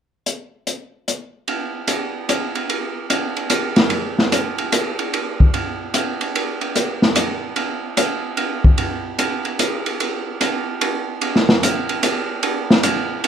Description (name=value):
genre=jazz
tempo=148 BPM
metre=3/4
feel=swing 66% on 8ths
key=none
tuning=none
part: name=open jazz drum kit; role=drums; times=0.3-13.3 s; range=hi-hat, kick drum, ride cymbal, snare drum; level=-17 LUFS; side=equal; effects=none
room=moderate club reverb, RT60 0.7 s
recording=dark, warm production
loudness=-18 LUFS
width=side -8 dB against mid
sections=0.3-1.5 A section; 1.5-11.2 B section; 11.2-13.3 C section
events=none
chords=none